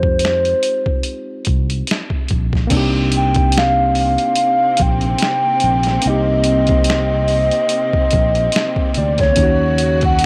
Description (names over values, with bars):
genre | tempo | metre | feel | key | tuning
R&B, neo-soul | 72 BPM | 4/4 | swing 57% on 16ths | C minor | A4 = 443 Hz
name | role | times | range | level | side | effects
hollow clarinet-like synth lead | melody | 0.0-10.3 s | C5 to G5 | -19 LUFS | equal | chorus, slapback echo
tine electric piano | accompaniment | 0.0-10.3 s | Ab3 to G4 | -26 LUFS | equal | overdrive
fingered electric bass | bass | 0.0-10.3 s | Bb1 to F2 | -21 LUFS | equal | tube saturation
boom bap sampler-style drum kit | drums | 0.0-10.3 s | crash cymbal, finger snaps, hi-hat, kick drum, snare drum | -21 LUFS | equal | none
rich studio string section | sustained chords | 2.7-10.3 s | C3 to Gb4 | -28 LUFS | equal | none
room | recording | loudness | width
light reverb, digital ambience | none | -16 LUFS | mono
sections
0.0-2.7 A section; 2.7-10.3 B section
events
none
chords
0.0 Fm9; 2.7 Cm9; 9.4 Ebm7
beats
0.21 1.04 1.87 | 2.71 3.54 4.37 5.21 | 6.04 6.87 7.71 8.54 | 9.37 10.21